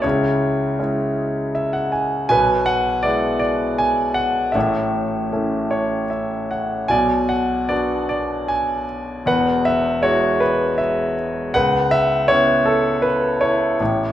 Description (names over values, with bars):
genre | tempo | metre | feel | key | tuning
classical, lyrical solo piano | 79 BPM | 3/4 | rubato | unclear | A4 = 440 Hz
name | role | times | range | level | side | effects
warm concert grand piano | solo | 0.0-14.1 s | E1 to G#5 | -17 LUFS | equal | none
room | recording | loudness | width
wet recital hall reverb, RT60 1.5 s | recorded in a church or concert hall | -17 LUFS | side -12 dB against mid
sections
0.0-14.1 A section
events
grand piano fill 1.2-2.3, 5.3-6.9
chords
0.0 C#m; 2.3 E/B; 4.6 A; 6.9 Bm; 9.3 Eadd9; 11.6 C#m7